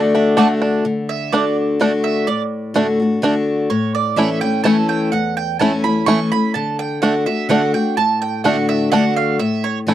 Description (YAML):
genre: bluegrass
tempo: 126 BPM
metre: 3/4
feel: straight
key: D major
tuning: A4 = 439 Hz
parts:
  - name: lap resonator guitar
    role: second line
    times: 0.0-0.5 s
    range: D5 to F#5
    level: -21 LUFS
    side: left 5 dB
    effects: none
  - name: picked steel-string acoustic guitar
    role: accompaniment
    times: 0.0-9.9 s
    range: E2 to F#4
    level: -17 LUFS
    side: left 2 dB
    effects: none
  - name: bluegrass banjo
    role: arpeggios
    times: 0.0-9.9 s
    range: A3 to E4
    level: -18 LUFS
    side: right 3 dB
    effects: none
  - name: mandolin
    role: stabs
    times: 0.4-9.8 s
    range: A3 to C#6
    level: -21 LUFS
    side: right 8 dB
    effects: none
room: light reverb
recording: dry, close 1970s-style studio recording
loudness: -15 LUFS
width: side -12 dB against mid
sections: 0.8-9.9 A section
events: mandolin solo 0.8-9.9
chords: 0.0 D; 3.7 A; 6.6 D; 9.4 A